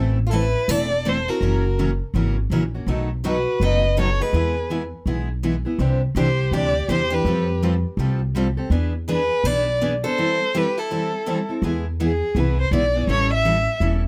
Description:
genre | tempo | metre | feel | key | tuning
acoustic string swing (jazz manouche) | 164 BPM | 4/4 | swing 60% on 8ths | A minor | A4 = 440 Hz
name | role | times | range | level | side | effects
picked steel-string acoustic guitar | accompaniment | 0.0-14.0 s | B2 to A4 | -28 LUFS | equal | none
picked steel-string acoustic guitar | accompaniment | 0.0-14.0 s | B2 to C5 | -32 LUFS | equal | none
upright bass | bass | 0.0-14.1 s | E1 to F2 | -24 LUFS | equal | none
warm violin | melody | 0.3-13.8 s | G#4 to E5 | -25 LUFS | equal | none
picked steel-string acoustic guitar | second line | 0.3-11.5 s | E4 to B4 | -32 LUFS | equal | none
room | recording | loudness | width
little or no reverb | close, detailed microphones | -21 LUFS | mono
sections
0.0-11.6 A section; 11.6-14.1 B section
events
none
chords
0.0 Am; 1.4 F#7; 2.9 B7; 4.3 E; 5.8 Cadd9; 7.3 Fadd9; 8.7 E7; 10.2 Am7; 11.6 E; 13.1 A7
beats
0.32 0.69 1.05 | 1.42 1.78 2.15 2.51 | 2.88 3.24 3.61 3.97 | 4.34 4.70 5.07 5.43 | 5.80 6.16 6.53 6.89 | 7.26 7.62 7.99 8.35 | 8.72 9.08 9.45 9.81 | 10.17 10.54 10.90 11.27 | 11.63 11.99 12.36 12.72 | 13.09 13.45 13.81

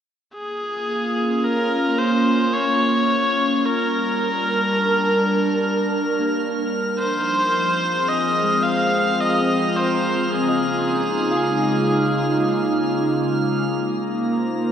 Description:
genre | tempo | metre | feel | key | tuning
ambient | 54 BPM | 3/4 | straight | Bb minor | A4 = 440 Hz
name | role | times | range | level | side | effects
bright electric violin | melody | 0.3-13.1 s | Ab4 to F5 | -22 LUFS | equal | diffuse ambient delay
warbly tape-like pad | sustained chords | 0.8-14.7 s | Db3 to A5 | -21 LUFS | equal | chorus, built-in reverb
overtone-sweeping drone | drone | 7.2-14.7 s | Bb3 | -37 LUFS | right 1 dB | none
drifting glass-harmonics texture | texture | 0.9-14.7 s | Bb5 to F6 | -32 LUFS | right 2 dB | chorus, built-in reverb
clean electric guitar | arpeggios | 6.2-14.7 s | Ab3 to Ab5 | -30 LUFS | equal | wide subtle chorus, diffuse ambient delay
room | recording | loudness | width
wet lush hall reverb, RT60 2.9 s | dreamy mix soaked in reverb, cassette tape | -18 LUFS | side -8 dB against mid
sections
0.3-14.7 A section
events
fade-in on clean electric guitar 0.3-14.7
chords
0.3 Bbm7; 3.6 Gm7; 7.0 Fm7; 10.3 Dbmaj7; 13.6 Bb7sus2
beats
| 0.32 1.43 2.54 | 3.65 4.76 5.87 | 6.98 8.09 9.21 | 10.32 11.43 12.54 | 13.65

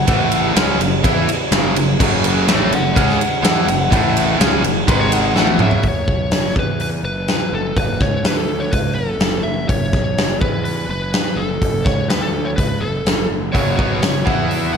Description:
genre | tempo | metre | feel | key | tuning
hard rock | 125 BPM | 4/4 | straight | F# minor | A4 = 441 Hz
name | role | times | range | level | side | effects
biting lead guitar | melody | 0.0-14.8 s | A4 to F#5 | -23 LUFS | left 1 dB | overdrive, slapback echo, tape echo
overdriven tonewheel organ | sustained chords | 0.0-5.8, 13.5-14.7 s | E3 to B4 | -31 LUFS | equal | none
cranked stack guitar | riff | 0.0-5.8, 13.5-14.8 s | F#2 to E4 | -21 LUFS | right 10 dB | overdrive
distorted electric guitar | riff | 0.0-5.8, 13.5-14.8 s | F#2 to E4 | -21 LUFS | left 10 dB | overdrive, slapback echo
fuzz fingered electric bass | bass | 0.0-14.8 s | F#1 to E2 | -23 LUFS | equal | overdrive
big rock drum kit | drums | 0.1-14.6 s | crash cymbal, hi-hat, kick drum, ride cymbal, snare drum, toms | -17 LUFS | equal | none
room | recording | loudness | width
moderate scoring stage reverb, RT60 2.0 s, studio reverb | big arena sound | -14 LUFS | side -6 dB against mid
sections
0.0-5.8 A section; 5.8-14.8 B section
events
lead electric guitar solo 0.0-5.8; drum fill 5.4-5.8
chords
0.1 A5; 0.6 F#m; 3.9 A5; 4.4 F#5; 4.9 G#5; 5.4 F#m; 5.8 F#5; 6.6 E5; 7.0 F#5; 8.2 D5; 8.7 F#m; 10.4 E5; 10.9 F#m; 12.1 D5; 12.6 F#m; 14.3 E5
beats
| 0.08 0.56 1.04 1.52 | 2.00 2.48 2.96 3.44 | 3.91 4.39 4.87 5.35 | 5.83 6.31 6.80 7.28 | 7.76 8.24 8.72 9.21 | 9.69 10.17 10.65 11.14 | 11.62 12.10 12.58 13.07 | 13.55 14.03 14.51

